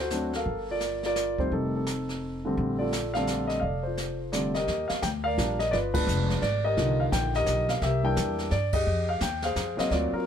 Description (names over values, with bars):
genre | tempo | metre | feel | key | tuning
jazz piano trio | 172 BPM | 3/4 | swing 63% on 8ths | Bb major, Eb major from 4.7 s | A4 = 440 Hz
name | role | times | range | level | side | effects
warm grand piano | melody | 0.0-10.3 s | D3 to G5 | -27 LUFS | left 1 dB | plate reverb
upright bass | bass | 0.0-10.2 s | F1 to G2 | -30 LUFS | equal | none
jazz brush drum kit | drums | 0.1-10.3 s | brushed snare drum, hi-hat, kick drum, ride cymbal, snare drum | -34 LUFS | right 2 dB | none
room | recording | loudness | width
light reverb | none | -25 LUFS | side -8 dB against mid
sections
0.0-4.7 A section; 4.7-10.3 B section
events
band accent 5.9, 8.7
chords
0.5 Gm11; 1.5 F9; 2.6 Bbmaj13; 4.7 Ebmaj9; 5.7 G7b9; 6.8 Cm11; 7.8 C7; 8.9 Fm9